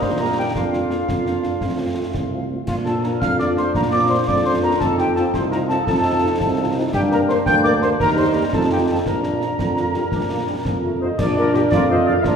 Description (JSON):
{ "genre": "military-style march for wind band", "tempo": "113 BPM (dotted quarters)", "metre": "6/8", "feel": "straight", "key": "Bb major", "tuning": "A4 = 443 Hz", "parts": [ { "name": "dark trumpet section", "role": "melody", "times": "0.0-12.4 s", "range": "F4 to G5", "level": "-25 LUFS", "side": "equal", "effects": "none" }, { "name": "small flute group", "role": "second line", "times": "0.0-12.4 s", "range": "F4 to G6", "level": "-24 LUFS", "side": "equal", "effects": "none" }, { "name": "bright trombone section", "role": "sustained chords", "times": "0.0-12.4 s", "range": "D3 to F4", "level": "-26 LUFS", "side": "equal", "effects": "none" }, { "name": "warm tuba", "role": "bass", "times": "0.0-12.4 s", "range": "Bb1 to Bb2", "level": "-22 LUFS", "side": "right 2 dB", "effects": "none" }, { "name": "concert snare drum, concert bass drum and clash cymbals", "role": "drums", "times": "0.0-12.4 s", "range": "none", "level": "-25 LUFS", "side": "equal", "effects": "none" }, { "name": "dark French horn section", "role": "accompaniment", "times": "0.2-12.1 s", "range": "F3 to Bb4", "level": "-27 LUFS", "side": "left 3 dB", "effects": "none" } ], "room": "wet scoring stage reverb, RT60 1.9 s", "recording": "recorded in a church or concert hall", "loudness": "-17 LUFS", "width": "side -7 dB against mid", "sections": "0.0-11.2 A section; 11.2-12.4 B section", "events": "none", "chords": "0.0 Eb; 0.6 Bb/F; 1.6 F; 2.7 Bb; 4.8 F7; 6.9 Gm; 8.0 Eb; 8.5 F9; 9.1 Bb" }